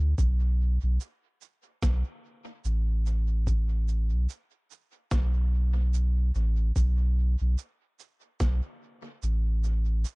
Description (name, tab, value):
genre	ambient dub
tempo	73 BPM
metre	4/4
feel	swing 57% on 16ths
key	unclear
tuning	A4 = 440 Hz
part	soft dub sub bass	bass	0.0-10.0 s	A1 to D2	-24 LUFS	equal	none
part	electronic cabasa and snare drum	drums	0.2-10.2 s	none	-39 LUFS	equal	overdrive, dub echo
part	electronic kick drum	drums	0.2-8.6 s	none	-28 LUFS	equal	overdrive
room	little or no reverb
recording	dark, warm production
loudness	-25 LUFS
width	side -30 dB against mid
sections	0.0-10.2 A section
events	none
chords	none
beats	| 0.18 1.00 1.83 2.65 | 3.47 4.29 5.11 5.94 | 6.76 7.58 8.40 9.22 | 10.04